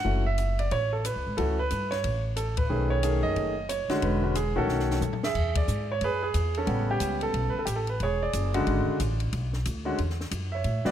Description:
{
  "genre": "jazz piano trio",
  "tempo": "181 BPM",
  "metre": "4/4",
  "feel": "swing 62% on 8ths",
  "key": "E mixolydian",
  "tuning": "A4 = 442 Hz",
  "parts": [
    { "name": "clear concert grand piano", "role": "melody", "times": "0.0-10.9 s", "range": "C#3 to F#5", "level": "-28 LUFS", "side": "right 1 dB", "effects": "none" },
    { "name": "upright bass", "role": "bass", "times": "0.0-10.9 s", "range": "E1 to A2", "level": "-29 LUFS", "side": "equal", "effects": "none" },
    { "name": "compact cocktail drum kit", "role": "drums", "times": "0.4-10.9 s", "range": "crash cymbal, hi-hat, kick drum, ride cymbal, snare drum, toms", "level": "-35 LUFS", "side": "left 2 dB", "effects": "none" }
  ],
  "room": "light reverb",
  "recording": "none",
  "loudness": "-25 LUFS",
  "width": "side -10 dB against mid",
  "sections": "0.0-5.4 A section; 5.4-10.9 A section",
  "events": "band accent 2.5, 5.5; drum fill 4.7-5.4",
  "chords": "0.0 F#m7; 2.7 B13; 4.0 E13; 4.7 B9; 5.4 E9; 6.7 A13; 8.0 E13; 9.3 Bm; 10.0 Esus2"
}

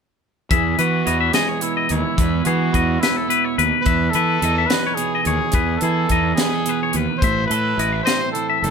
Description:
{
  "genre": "math rock and midwest emo",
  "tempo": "72 BPM (dotted quarters)",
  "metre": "6/8",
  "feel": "straight",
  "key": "E major",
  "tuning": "A4 = 440 Hz",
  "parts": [
    { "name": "bright trumpet", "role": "melody", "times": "0.5-8.7 s", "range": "E4 to C5", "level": "-24 LUFS", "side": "equal", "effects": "none" },
    { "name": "twelve-string electric guitar", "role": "accompaniment", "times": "0.5-8.7 s", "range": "E2 to A4", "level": "-24 LUFS", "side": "right 11 dB", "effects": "none" },
    { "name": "twangy electric guitar", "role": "arpeggios", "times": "0.5-8.7 s", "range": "G#4 to E5", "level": "-22 LUFS", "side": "left 9 dB", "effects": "harmonic tremolo" },
    { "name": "fuzz fingered electric bass", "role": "bass", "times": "0.5-8.7 s", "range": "F#1 to E3", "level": "-22 LUFS", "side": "equal", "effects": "overdrive" },
    { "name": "crisp fusion drum kit", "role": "drums", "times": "0.5-8.7 s", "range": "hi-hat, kick drum, snare drum", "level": "-22 LUFS", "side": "left 1 dB", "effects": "none" }
  ],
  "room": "light reverb",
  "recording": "band playing live in one room",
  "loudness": "-16 LUFS",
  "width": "side -6 dB against mid",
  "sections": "0.5-8.7 A section",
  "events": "none",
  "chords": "0.5 Emaj7; 7.2 Amadd9"
}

